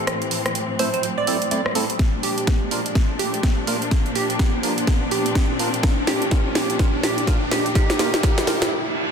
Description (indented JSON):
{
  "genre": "bass house",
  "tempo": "125 BPM",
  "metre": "4/4",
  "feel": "swing 60% on 16ths",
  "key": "unclear",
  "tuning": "A4 = 440 Hz",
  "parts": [
    { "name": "glassy wavetable pluck", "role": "melody", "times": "0.0-8.7 s", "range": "G4 to D5", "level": "-27 LUFS", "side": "right 4 dB", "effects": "chorus, dub echo" },
    { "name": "muted studio string section", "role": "sustained chords", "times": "0.0-9.1 s", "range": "A2 to D4", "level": "-28 LUFS", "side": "left 3 dB", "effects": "sidechain pumping" },
    { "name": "riser and reverse cymbal", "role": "sound effects", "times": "0.0-9.1 s", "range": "none", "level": "-29 LUFS", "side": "right 1 dB", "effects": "none" },
    { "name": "house drum kit", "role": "drums", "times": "0.1-8.7 s", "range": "hi-hat, rim click, snare drum", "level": "-24 LUFS", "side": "equal", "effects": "none" },
    { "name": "percussive organ stab", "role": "stabs", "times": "0.8-8.6 s", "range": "A3 to D5", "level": "-29 LUFS", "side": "right 2 dB", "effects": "analog chorus, sidechain pumping, dub echo" },
    { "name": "electronic kick drum", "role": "drums", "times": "2.0-8.3 s", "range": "none", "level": "-19 LUFS", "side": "equal", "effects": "none" }
  ],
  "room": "light reverb, digital ambience",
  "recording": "dense, heavily limited modern master",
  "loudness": "-18 LUFS",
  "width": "side -6 dB against mid",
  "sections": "0.0-9.1 A section",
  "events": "build-up 0.0-9.1; riser 0.0-8.7; drum fill 2.0-8.7; break 8.7-9.1; reverse cymbal 8.7-9.1",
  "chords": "0.0 Am; 2.0 Bb",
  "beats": "| 0.07 0.55 1.03 1.51 | 1.99 2.47 2.95 3.43 | 3.91 4.39 4.87 5.35 | 5.83 6.31 6.79 7.27 | 7.75 8.23 8.71"
}